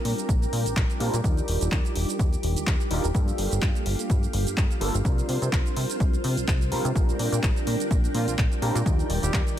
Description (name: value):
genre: filtered disco house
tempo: 126 BPM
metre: 4/4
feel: swing 55% on 16ths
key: Bb major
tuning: A4 = 440 Hz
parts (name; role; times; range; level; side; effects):
- overdriven tine electric piano; accompaniment; 0.0-9.6 s; G3 to Bb4; -31 LUFS; right 1 dB; phaser, sidechain pumping, low-pass filter
- string machine, full ensemble; sustained chords; 0.0-9.6 s; Eb3 to D6; -33 LUFS; right 1 dB; ensemble chorus, sidechain pumping, low-pass filter
- plucky analog bass; bass; 0.0-9.4 s; Eb1 to C3; -27 LUFS; equal; tube saturation, sidechain pumping, low-pass filter
- punchy analog drum machine; drums; 0.1-9.6 s; handclaps, hi-hat, shaker; -32 LUFS; right 1 dB; overdrive, sidechain pumping on hats, sidechain pumping on cymbals, sidechain pumping on perc
- electronic kick drum; drums; 0.3-9.4 s; none; -24 LUFS; equal; overdrive
- clear horn section; melody; 8.1-9.4 s; F3 to G4; -35 LUFS; equal; sidechain pumping, low-pass filter, ping-pong delay
room: little or no reverb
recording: none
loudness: -22 LUFS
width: side -11 dB against mid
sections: 0.0-9.6 A section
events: filter sweep 0.0-9.6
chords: 0.0 Bb6; 1.2 Ebmaj7; 3.1 Gm7; 5.0 C7sus4; 7.0 Bb6; 8.9 Ebmaj7